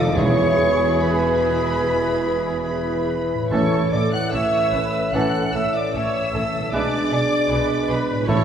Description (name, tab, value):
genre	classical, slow romantic movement for symphony orchestra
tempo	70-78 BPM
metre	4/4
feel	rubato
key	A major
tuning	A4 = 443 Hz
part	dark studio violin section	melody	0.0-8.4 s	B5 to F#6	-30 LUFS	left 1 dB	none
part	dark clarinet	second line	0.0-8.4 s	C#4 to E4	-31 LUFS	equal	none
part	hollow small flute group	second line	0.0-8.4 s	B4 to F#5	-26 LUFS	left 1 dB	none
part	warm symphonic violin section	second line	0.0-8.4 s	C#4 to A4	-35 LUFS	equal	none
part	mellow bassoon	accompaniment	0.0-8.4 s	E3 to A3	-29 LUFS	equal	none
part	rich studio viola section	accompaniment	0.0-8.4 s	G#4 to D5	-30 LUFS	equal	none
part	clear trombone section	sustained chords	0.0-8.4 s	F2 to G#3	-28 LUFS	right 3 dB	none
part	concert harp	arpeggios	0.0-8.4 s	E2 to E5	-32 LUFS	left 3 dB	none
part	dark trumpet section	stabs	0.0-8.4 s	B4 to F#5	-25 LUFS	right 1 dB	none
part	rich symphonic cello section	bass	0.0-8.4 s	E2 to B2	-31 LUFS	right 2 dB	none
part	warm symphonic double bass section	bass	0.0-8.4 s	E1 to B1	-30 LUFS	right 1 dB	none
part	clear oboe	second line	0.2-8.4 s	G#4 to B4	-32 LUFS	right 1 dB	none
part	mellow French horn section	sustained chords	0.2-8.4 s	G#3 to E4	-28 LUFS	equal	none
part	timpani	percussion	0.2-8.4 s	E2 to A2	-28 LUFS	right 2 dB	none
room	wet recital hall reverb, RT60 1.8 s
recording	recorded in a church or concert hall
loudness	-18 LUFS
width	side -8 dB against mid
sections	0.0-8.4 A section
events	none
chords	0.2 E; 3.5 A; 6.7 G#dim/B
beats	| 0.15 1.00 1.83 2.66 | 3.50 4.32 5.13 5.94 | 6.73 7.51 8.28